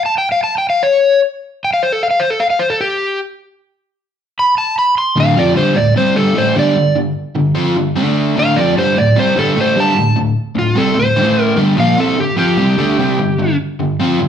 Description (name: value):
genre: rock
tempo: 150 BPM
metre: 4/4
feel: straight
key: unclear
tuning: A4 = 440 Hz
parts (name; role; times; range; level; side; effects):
- overdriven slide guitar; melody; 0.0-13.6 s; F4 to C6; -14 LUFS; left 1 dB; none
- overdriven semi-hollow guitar; riff; 5.2-14.3 s; D2 to F4; -13 LUFS; equal; none
room: moderate large studio reverb, RT60 0.9 s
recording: band playing live in one room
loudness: -12 LUFS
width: side -8 dB against mid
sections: 0.0-5.2 A section; 5.2-14.3 B section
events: electric slide guitar solo 0.0-5.2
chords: 0.0 N.C.; 5.2 D5; 6.8 G5; 8.0 D5; 11.2 A5; 11.6 G5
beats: 0.01 | 0.41 0.80 1.20 1.60 | 1.99 2.39 2.79 3.18 | 3.58 3.98 4.37 4.77 | 5.17 5.57 5.97 6.37 | 6.77 7.17 7.57 7.97 | 8.37 8.77 9.17 9.57 | 9.97 10.38 10.78 11.18 | 11.58 11.98 12.38 12.79 | 13.19 13.59 13.99